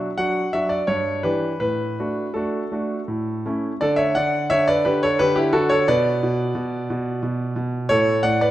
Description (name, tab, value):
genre	classical-period piano sonatina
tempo	81-90 BPM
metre	3/4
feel	rubato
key	D major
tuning	A4 = 439 Hz
part	clear concert grand piano	solo	0.0-8.5 s	G2 to F#5	-19 LUFS	equal	none
room	wet recital hall reverb, RT60 1.4 s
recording	none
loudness	-19 LUFS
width	side -14 dB against mid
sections	0.0-3.8 A section; 3.8-8.5 B section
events	none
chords	0.0 Bm (rootless); 0.9 Em7/G; 1.6 D/A; 3.1 A; 3.8 D; 5.9 N.C.; 7.9 A69